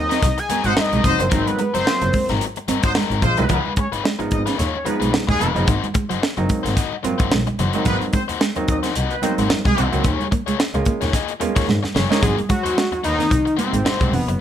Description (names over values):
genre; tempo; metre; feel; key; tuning
funk; 110 BPM; 4/4; swing 56% on 16ths; Ab mixolydian; A4 = 437 Hz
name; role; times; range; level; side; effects
fat analog lead; melody; 0.0-2.3, 12.2-14.4 s; Cb4 to Ab5; -21 LUFS; left 1 dB; chorus, plate reverb
overdriven clav; stabs; 0.0-12.2 s; F3 to Gb4; -25 LUFS; right 2 dB; none
dark double bass; bass; 0.0-14.4 s; F1 to Ab2; -24 LUFS; equal; none
biting overdriven guitar; accompaniment; 0.1-14.3 s; Gb3 to Eb5; -26 LUFS; left 8 dB; none
mellow electric guitar; riff; 0.1-14.2 s; F3 to Db4; -25 LUFS; right 5 dB; harmonic tremolo
tight funk drum kit; drums; 0.1-14.4 s; hi-hat, kick drum, snare drum; -22 LUFS; equal; none
congas; percussion; 0.5-14.3 s; none; -30 LUFS; right 4 dB; none
warm horn section; second line; 0.7-9.9 s; Gb3 to Eb5; -24 LUFS; left 1 dB; none
room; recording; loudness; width
light reverb; none; -17 LUFS; side -10 dB against mid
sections
0.0-3.5 A section; 3.5-12.2 B section; 12.2-14.4 C section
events
analog synth lead solo 0.0-3.5; drum fill 11.7-12.2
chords
0.0 Ab9; 3.5 Db9; 5.7 Ab9; 10.0 Eb9sus4; 12.2 Ab9